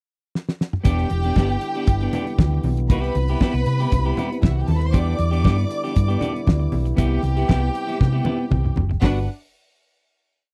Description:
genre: disco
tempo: 118 BPM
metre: 4/4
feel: straight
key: unclear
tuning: A4 = 440 Hz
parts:
  - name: damped 70s drum kit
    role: drums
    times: 0.4-9.2 s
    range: hi-hat, kick drum, snare drum, toms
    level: -21 LUFS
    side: equal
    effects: none
  - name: rich studio string section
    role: second line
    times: 0.8-9.3 s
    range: D4 to D6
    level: -31 LUFS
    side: equal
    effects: none
  - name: clean electric guitar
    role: accompaniment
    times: 0.8-9.2 s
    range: B3 to G4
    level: -29 LUFS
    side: equal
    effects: none
  - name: dark French horn section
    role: sustained chords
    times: 0.8-9.3 s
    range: C3 to F#4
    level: -33 LUFS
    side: equal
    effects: none
  - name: congas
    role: percussion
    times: 0.8-9.3 s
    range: none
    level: -32 LUFS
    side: equal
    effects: none
  - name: hollow-body short-scale fingered electric bass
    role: bass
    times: 0.9-9.3 s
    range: E1 to C3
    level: -23 LUFS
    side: equal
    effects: none
room: little or no reverb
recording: dry, close 1970s-style studio recording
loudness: -21 LUFS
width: mono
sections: 0.0-0.8 pickup bar; 0.8-9.0 groove; 9.0-10.5 final chord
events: drum fill 0.3-0.8, 8.0-9.0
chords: 0.0 N.C.; 0.8 Em7; 2.9 Cmaj7; 4.9 Em7; 7.0 Cmaj7; 9.0 Gmaj7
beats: 0.34 | 0.85 1.36 1.87 2.38 | 2.89 3.40 3.92 4.43 | 4.94 5.45 5.96 6.47 | 6.98 7.49 8.00 8.51 | 9.02

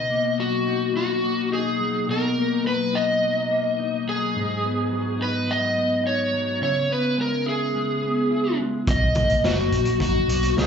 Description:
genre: indie pop, bedroom pop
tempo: 106 BPM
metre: 4/4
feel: straight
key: B major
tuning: A4 = 443 Hz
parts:
  - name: overdriven slide guitar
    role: melody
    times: 0.0-10.7 s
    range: F#4 to D#5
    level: -23 LUFS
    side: equal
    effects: lush chorus, slapback echo, tape echo
  - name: mellow electric guitar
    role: accompaniment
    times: 0.0-10.7 s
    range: G#2 to E4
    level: -25 LUFS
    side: left 2 dB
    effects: lush chorus, warbly pitch drift
  - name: vintage muted picked electric bass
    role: bass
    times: 8.9-10.7 s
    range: F#1 to C#2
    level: -23 LUFS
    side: equal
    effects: none
  - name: raw garage drum kit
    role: drums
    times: 8.9-10.7 s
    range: hi-hat, kick drum, snare drum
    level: -25 LUFS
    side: equal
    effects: none
room: moderate club reverb, RT60 0.6 s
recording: live gig heard through the venue's PA, club reverb, nothing above 7.7 kHz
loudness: -20 LUFS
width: side -7 dB against mid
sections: 0.0-10.7 A section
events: none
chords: 0.0 Bmaj7; 4.3 G#m7; 6.6 C#m7; 8.9 Bmaj7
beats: 0.39 0.95 1.52 | 2.09 2.65 3.22 3.78 | 4.35 4.92 5.48 6.05 | 6.61 7.18 7.74 8.31 | 8.88 9.44 10.01 10.57

